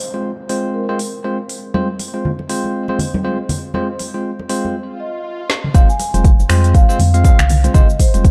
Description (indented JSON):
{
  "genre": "afro house",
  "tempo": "120 BPM",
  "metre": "4/4",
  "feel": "swing 59% on 16ths",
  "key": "F minor",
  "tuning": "A4 = 440 Hz",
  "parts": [
    { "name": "marimba with soft mallets", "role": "melody", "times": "0.0-1.5, 5.0-8.3 s", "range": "Bb4 to Ab5", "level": "-27 LUFS", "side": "equal", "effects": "tape echo" },
    { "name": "downlifter and swell", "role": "sound effects", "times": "0.0-5.7 s", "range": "none", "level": "-38 LUFS", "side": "equal", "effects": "none" },
    { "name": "bell-like tine electric piano", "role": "stabs", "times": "0.1-8.3 s", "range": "Ab3 to F5", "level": "-24 LUFS", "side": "equal", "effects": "sidechain pumping, low-pass filter, delay" },
    { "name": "afro-pop drum kit", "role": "drums", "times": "0.5-8.3 s", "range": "finger snaps, hi-hat, shaker, snare drum, toms", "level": "-25 LUFS", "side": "equal", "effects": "none" },
    { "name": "congas", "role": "percussion", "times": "1.7-8.3 s", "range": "none", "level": "-25 LUFS", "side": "equal", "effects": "none" },
    { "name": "round analog bass", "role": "bass", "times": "5.7-8.3 s", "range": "F1 to F2", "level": "-16 LUFS", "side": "equal", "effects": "sidechain pumping" },
    { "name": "electronic kick drum", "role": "drums", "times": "5.7-8.3 s", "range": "none", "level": "-12 LUFS", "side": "equal", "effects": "none" }
  ],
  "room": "light reverb, digital ambience",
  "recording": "dark, warm production",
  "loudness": "-16 LUFS",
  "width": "mono",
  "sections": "0.0-5.7 A section; 5.7-8.3 B section",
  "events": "swell 4.9-5.7; drum fill 5.5; drop 5.7-8.3",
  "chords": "0.0 Fm"
}